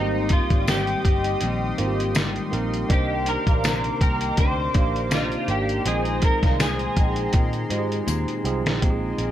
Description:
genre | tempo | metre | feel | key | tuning
indie pop, bedroom pop | 81 BPM | 4/4 | swing 55% on 16ths | unclear | A4 = 435 Hz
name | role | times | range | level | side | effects
electric guitar at the edge of break-up | melody | 0.0-7.3 s | Eb4 to C5 | -26 LUFS | left 1 dB | ensemble chorus, slapback echo
vibraphone with soft mallets | second line | 0.0-7.9 s | C5 to G5 | -33 LUFS | right 4 dB | analog chorus, slapback echo
clean electric guitar | accompaniment | 0.0-9.3 s | Ab2 to Eb4 | -30 LUFS | left 5 dB | wide subtle chorus, vibrato effect
tine electric piano | accompaniment | 0.0-9.3 s | Bb3 to Bb4 | -31 LUFS | right 6 dB | cassette tape
warm analog pad | sustained chords | 0.0-9.3 s | G4 to Eb6 | -33 LUFS | equal | chorus, tremolo
vintage muted picked electric bass | bass | 0.0-9.3 s | G1 to Bb2 | -28 LUFS | equal | none
lo-fi sampler-style drum kit | drums | 0.3-9.3 s | hi-hat, kick drum, snare drum | -22 LUFS | equal | none
tambourine | percussion | 0.7-8.3 s | none | -36 LUFS | left 16 dB | none
room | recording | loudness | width
digital ambience | none | -20 LUFS | side -11 dB against mid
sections
0.0-8.8 A section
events
drum fill 7.3-8.8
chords
0.0 Abmaj7; 2.9 Cm9; 5.9 Bb9sus4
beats
0.68 1.42 2.16 | 2.90 3.64 4.38 5.12 | 5.86 6.60 7.34 8.08 | 8.82

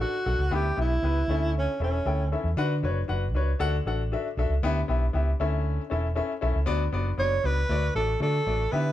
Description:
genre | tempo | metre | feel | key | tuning
soul | 117 BPM | 4/4 | straight | D major | A4 = 439 Hz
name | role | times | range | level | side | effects
breathy tenor saxophone | melody | 0.0-2.3, 7.2-8.9 s | C#4 to C#5 | -28 LUFS | right 2 dB | none
clear baby grand piano | accompaniment | 0.0-8.9 s | D3 to G5 | -30 LUFS | left 5 dB | none
vintage muted fingered electric bass | bass | 0.0-8.9 s | E1 to D3 | -26 LUFS | right 1 dB | none
room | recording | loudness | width
light reverb | band playing live in one room | -24 LUFS | side -13 dB against mid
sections
0.0-8.9 A section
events
none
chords
0.0 D; 0.5 Em; 1.3 A; 2.6 Bm; 3.6 D; 4.6 Em; 5.4 A; 6.7 Bm; 7.7 D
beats
0.01 0.52 1.04 | 1.55 2.06 2.58 3.09 | 3.60 4.11 4.63 5.14 | 5.65 6.17 6.68 7.19 | 7.70 8.21 8.73

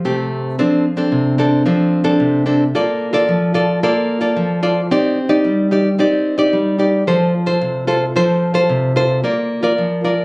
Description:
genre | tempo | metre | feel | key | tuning
samba | 111 BPM | 4/4 | straight | Bb major | A4 = 438 Hz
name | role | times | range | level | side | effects
nylon-string guitar | solo | 0.0-10.2 s | C3 to D5 | -13 LUFS | equal | none
room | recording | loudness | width
moderate studio reverb, RT60 0.7 s | recorded on a phone in the room, club reverb | -13 LUFS | side -29 dB against mid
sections
0.0-9.2 A section; 9.2-10.2 B section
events
none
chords
0.0 Fadd9 (rootless); 0.6 F6; 2.8 Bbmaj7; 4.9 Cmadd9; 7.1 F; 9.2 Bb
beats
0.06 | 0.60 1.14 1.68 2.22 | 2.76 3.30 3.84 4.38 | 4.92 5.46 6.00 6.54 | 7.08 7.62 8.16 8.70 | 9.24 9.78

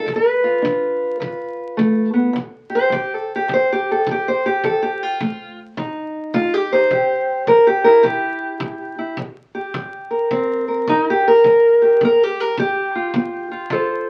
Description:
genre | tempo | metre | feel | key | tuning
acoustic country blues, solo or duo | 106 BPM | 4/4 | swing 64% on 8ths | unclear | A4 = 438 Hz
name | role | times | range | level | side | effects
fingerpicked steel-string acoustic guitar | melody | 0.0-14.1 s | C3 to C5 | -18 LUFS | equal | none
kick drum | drums | 0.1-13.9 s | none | -33 LUFS | equal | none
room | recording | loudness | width
moderate small room reverb, RT60 0.5 s | very old 78 rpm record, vinyl crackle | -18 LUFS | mono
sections
0.0-2.4 A section; 2.4-14.1 B section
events
steel-string acoustic guitar solo 2.4-14.1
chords
0.1 G7; 2.4 C5; 4.6 F7; 6.9 C7; 11.4 G7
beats
| 0.09 0.65 1.22 1.79 | 2.36 2.93 3.50 4.07 | 4.64 5.20 5.77 6.34 | 6.91 7.47 8.04 8.61 | 9.18 9.74 10.31 10.87 | 11.44 12.01 12.57 13.14 | 13.70

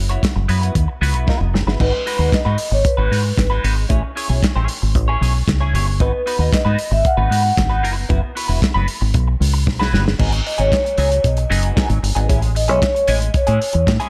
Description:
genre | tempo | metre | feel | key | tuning
disco | 114 BPM | 4/4 | straight | G# phrygian | A4 = 439 Hz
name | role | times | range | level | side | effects
deep dub fingered electric bass | bass | 0.0-14.0 s | E1 to A2 | -20 LUFS | equal | none
clean electric guitar | accompaniment | 0.1-14.1 s | F#3 to C#5 | -27 LUFS | equal | wah, spring reverb
warm soul drum kit | drums | 0.1-14.1 s | crash cymbal, handclaps, hi-hat, kick drum, snare drum | -23 LUFS | equal | none
vibraphone with soft mallets | melody | 1.8-13.8 s | B4 to F#5 | -22 LUFS | equal | slapback echo
room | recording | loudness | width
small room ambience | none | -17 LUFS | mono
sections
0.0-1.8 A section; 1.8-10.2 B section; 10.2-14.1 C section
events
drum fill 1.3-1.8, 9.7-10.2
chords
0.0 F#7sus4; 1.8 G#m7; 3.9 Amaj7; 6.0 G#m7; 7.8 F#7sus4; 10.2 G#m7; 12.3 Amaj7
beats
0.23 0.75 1.28 | 1.80 2.33 2.85 3.38 | 3.90 4.43 4.95 5.48 | 6.00 6.53 7.05 7.58 | 8.10 8.62 9.15 9.67 | 10.20 10.72 11.24 11.77 | 12.29 12.82 13.34 13.87

